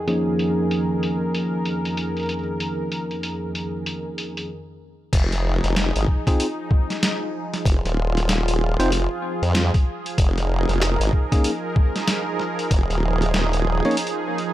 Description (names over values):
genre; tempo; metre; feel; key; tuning
glitch hop; 95 BPM; 4/4; swing 61% on 16ths; F minor; A4 = 440 Hz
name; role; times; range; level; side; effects
warm analog pad; sustained chords; 0.0-14.5 s; F2 to Bb4; -27 LUFS; right 2 dB; chorus, tremolo, sidechain pumping
tine electric piano; stabs; 0.0-13.9 s; F3 to Db5; -24 LUFS; equal; vintage 12-bit sampler grit, sidechain pumping, low-pass filter, ping-pong delay
boom bap sampler-style drum kit; drums; 0.1-14.5 s; crash cymbal, hi-hat, snare drum; -26 LUFS; equal; overdrive, low-pass filter on hats, low-pass filter on cymbals, low-pass filter on snare
formant-sweep wobble bass; bass; 5.1-13.8 s; Eb1 to F2; -21 LUFS; equal; chorus, tube saturation
electronic kick drum; drums; 5.1-12.9 s; none; -18 LUFS; equal; overdrive
room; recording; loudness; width
digital ambience; none; -20 LUFS; side -14 dB against mid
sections
0.0-5.1 A section; 5.1-14.5 B section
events
stop 4.5-5.1; drop 5.1-14.5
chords
0.1 Db69/F; 5.1 Fm7; 10.2 Ebsus4